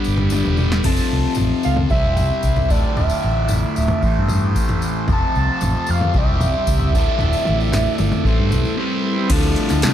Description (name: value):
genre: psychedelic rock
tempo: 114 BPM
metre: 4/4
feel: straight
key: D dorian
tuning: A4 = 440 Hz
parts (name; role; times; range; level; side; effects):
- overdriven combo organ; sustained chords; 0.0-9.9 s; D3 to D5; -29 LUFS; right 6 dB; none
- fuzz guitar; riff; 0.0-9.9 s; D2 to C4; -22 LUFS; left 2 dB; distortion, phaser, analog delay
- tambourine; percussion; 0.0-9.9 s; none; -36 LUFS; left 9 dB; none
- vintage muted fingered electric bass; bass; 0.1-9.9 s; D1 to C3; -20 LUFS; equal; none
- electro analog drum machine; drums; 0.2-9.9 s; crash cymbal, hi-hat, kick drum, snare drum, toms; -21 LUFS; equal; none
- overdriven synth lead; melody; 0.9-8.8 s; D5 to A5; -24 LUFS; right 1 dB; phaser, analog delay
room: light reverb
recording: echo-heavy mix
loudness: -16 LUFS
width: side -10 dB against mid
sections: 0.9-9.3 A section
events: drum fill 0.3-0.9; break 8.8-9.3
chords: 0.0 G; 0.9 F; 1.9 Cadd9; 2.7 Dmadd9; 4.0 Am7; 5.1 F; 6.2 Cadd9; 6.9 Dmadd9; 8.3 Am7; 8.8 Cmaj7; 9.3 Dm